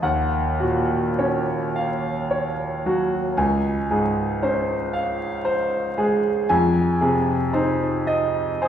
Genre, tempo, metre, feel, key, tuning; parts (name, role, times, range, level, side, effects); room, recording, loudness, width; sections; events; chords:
classical, impressionist solo piano; 34-39 BPM (dotted quarters); 6/8; rubato; Db major; A4 = 440 Hz
clear concert grand piano; solo; 0.0-8.7 s; Db2 to Ab5; -20 LUFS; equal
wet scoring stage reverb, RT60 2.0 s; heard from further back in the room, vinyl crackle, lossy compression artefacts; -20 LUFS; side -9 dB against mid
0.0-8.7 A section
0.0 Ebm9; 3.4 Dbmaj7; 6.5 Fm7